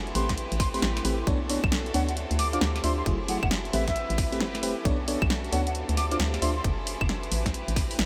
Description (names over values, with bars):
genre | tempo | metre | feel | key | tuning
UK garage, two-step garage | 134 BPM | 4/4 | swing 64% on 16ths | B minor | A4 = 445 Hz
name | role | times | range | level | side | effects
clear chamber violin section | sustained chords | 0.0-8.1 s | C4 to B4 | -40 LUFS | equal | sidechain pumping
hollow knocking FM bass | bass | 0.0-8.1 s | E1 to D2 | -32 LUFS | equal | none
warbly tape-like pad | texture | 0.0-8.1 s | E4 to D6 | -41 LUFS | equal | chorus, built-in reverb, sidechain pumping
FM electric piano | stabs | 0.1-6.5 s | F#3 to F5 | -35 LUFS | equal | chorus, vintage 12-bit sampler grit, tape echo
punchy analog drum machine | drums | 0.1-8.1 s | claves, hi-hat, snare drum | -33 LUFS | equal | none
bright wooden flute | melody | 0.2-6.6 s | E5 to D6 | -37 LUFS | equal | vintage 12-bit sampler grit, tape echo
electronic kick drum | drums | 0.3-7.9 s | none | -32 LUFS | equal | none
room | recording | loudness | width
moderate huge ambient reverb, RT60 7.1 s | dreamy mix soaked in reverb | -27 LUFS | mono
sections
0.0-8.1 A section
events
none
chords
0.2 Am9; 1.3 Bm9; 2.2 Dm9; 3.1 F#m9; 3.7 Am9; 4.9 Bm9; 5.7 Dm9; 6.6 F#m9; 7.3 Am9